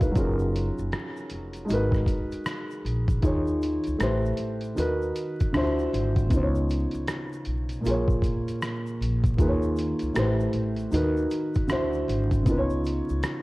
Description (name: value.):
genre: lo-fi hip hop.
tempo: 78 BPM.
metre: 4/4.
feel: swing 64% on 16ths.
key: G# dorian.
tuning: A4 = 438 Hz.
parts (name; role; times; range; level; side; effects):
dark upright piano; accompaniment; 0.0-13.4 s; A2 to E#5; -26 LUFS; equal; cassette tape.
upright bass; bass; 0.0-13.2 s; E#1 to D#2; -28 LUFS; equal; none.
trip hop sampler-style drum kit; drums; 0.0-13.4 s; hi-hat, kick drum, rim click; -28 LUFS; equal; none.
egg shaker; percussion; 0.0-13.4 s; none; -58 LUFS; left 6 dB; none.
room: light reverb.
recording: worn, warbling old tape, cassette tape, vinyl crackle, warbly pitch drift.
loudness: -23 LUFS.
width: side -20 dB against mid.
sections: 0.0-3.2 A section; 3.2-13.4 B section.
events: none.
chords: 0.2 F#maj7; 1.7 G#m9; 3.2 D#7sus4; 4.0 Am7; 4.8 Bmaj7/D#; 5.5 D9; 6.3 C#9; 7.8 A#m7; 9.4 D#7sus4; 10.2 Am7; 10.9 Bmaj7/D#; 11.7 D9; 12.5 C#9.